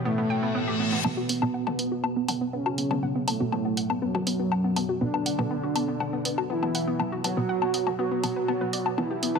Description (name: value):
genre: melodic techno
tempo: 121 BPM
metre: 4/4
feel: straight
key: B minor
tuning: A4 = 441 Hz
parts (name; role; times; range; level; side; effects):
- deep dark ambient pad; sustained chords; 0.0-9.4 s; B2 to C#5; -36 LUFS; right 2 dB; chorus, built-in reverb
- overtone-sweeping drone; drone; 0.3-1.1 s; B2 to B3; -43 LUFS; right 1 dB; none
- analog synth brass; melody; 0.1-9.4 s; F#3 to F#4; -29 LUFS; right 2 dB; chorus, digital delay
- soft supersaw; second line; 0.1-9.4 s; F#2 to F#3; -33 LUFS; equal; low-pass filter, ping-pong delay
- analog pluck; arpeggios; 0.1-9.4 s; B3 to G5; -32 LUFS; left 1 dB; chorus, ping-pong delay
- reverse cymbal and riser; sound effects; 0.3-1.0, 9.0-9.4 s; none; -32 LUFS; left 4 dB; none
- filtered dub chord stab; stabs; 1.0-9.4 s; B2 to E4; -32 LUFS; right 2 dB; analog chorus, ping-pong delay
- punchy analog drum machine; drums; 1.0-9.4 s; hi-hat, toms, woodblock; -31 LUFS; left 4 dB; high-pass filter on toms, high-pass filter on perc, high-pass filter on hats
room: moderate lush hall reverb, RT60 2.0 s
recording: high-pass filter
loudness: -24 LUFS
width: side -5 dB against mid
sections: 0.0-1.0 A section; 1.0-9.4 B section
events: filter sweep on analog polysynth 0.0-1.0, 1.0-9.4; filter sweep on ambient pad 0.0-1.0, 1.0-9.4; reverse cymbal 0.3-1.0; build-up 1.0-9.4; filter sweep on synth arpeggio sound 1.0-9.4; filter sweep on supersaw synth 1.0-9.4; filter sweep on synth stab 1.0-9.4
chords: 0.0 Em/B; 1.0 Bm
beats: 0.05 0.55 | 1.05 1.54 2.04 2.53 | 3.03 3.52 4.02 4.52 | 5.01 5.51 6.00 6.50 | 7.00 7.49 7.99 8.48 | 8.98